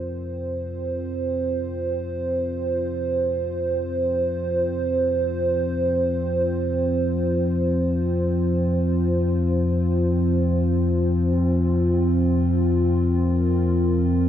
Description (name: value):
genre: dark ambient drone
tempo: free time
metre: none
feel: none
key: unclear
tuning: A4 = 440 Hz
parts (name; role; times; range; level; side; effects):
- dark analog pad; sustained chords; 0.0-14.3 s; C4 to C5; -23 LUFS; right 2 dB; chorus
- deep rumbling drone; drone; 0.0-14.3 s; F2 to F3; -23 LUFS; left 2 dB; built-in reverb
- quartz singing bowl; texture; 0.0-14.3 s; F4 to Bb4; -38 LUFS; right 2 dB; none
room: wet spring reverb, RT60 2.5 s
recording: none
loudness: -20 LUFS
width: side -10 dB against mid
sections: 0.0-14.3 A section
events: none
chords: 0.0 F5